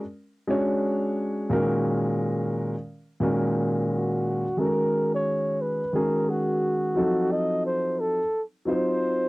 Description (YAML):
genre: hip hop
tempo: 88 BPM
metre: 4/4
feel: swing 64% on 16ths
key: unclear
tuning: A4 = 440 Hz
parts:
  - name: dark grand piano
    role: accompaniment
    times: 0.5-9.3 s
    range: A#2 to C#5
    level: -24 LUFS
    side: equal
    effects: cassette tape
  - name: breathy flugelhorn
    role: melody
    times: 3.9-9.3 s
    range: F#4 to Eb5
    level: -25 LUFS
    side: equal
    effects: none
room: light reverb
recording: home recording on cassette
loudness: -23 LUFS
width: side -21 dB against mid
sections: 0.0-9.3 A section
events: none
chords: 0.0 A#7#9b13 (rootless); 1.5 D#m7/A#; 4.6 G#9sus4; 7.0 F7b9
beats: 0.49 1.17 | 1.86 2.54 3.22 3.90 | 4.58 5.26 5.95 6.63 | 7.31 7.99 8.67